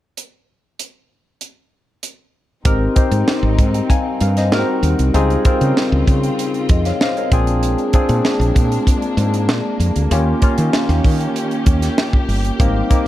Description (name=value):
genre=polished 1980s jazz-funk pop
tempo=97 BPM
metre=4/4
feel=straight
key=Ab major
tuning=A4 = 440 Hz
part: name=tight funk drum kit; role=drums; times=0.2-13.0 s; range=hi-hat, kick drum, snare drum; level=-17 LUFS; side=equal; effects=none
part: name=barky tine electric piano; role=accompaniment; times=2.6-13.1 s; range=Bb3 to Bb5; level=-19 LUFS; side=left 2 dB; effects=wide subtle chorus
part: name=woody fretless electric bass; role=bass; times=2.6-12.8 s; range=G1 to Eb3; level=-17 LUFS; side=equal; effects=none
part: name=warm studio string section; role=sustained chords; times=2.7-13.1 s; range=Db3 to G4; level=-26 LUFS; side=equal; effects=none
room=studio ambience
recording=dark, warm production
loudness=-14 LUFS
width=side -14 dB against mid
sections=0.2-2.7 A section; 2.7-13.1 B section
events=tine electric piano fill 6.4-7.6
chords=0.2 N.C.; 2.7 Abmaj7; 4.5 Ab7; 5.1 Dbmaj7; 7.3 Bb7; 10.1 Eb7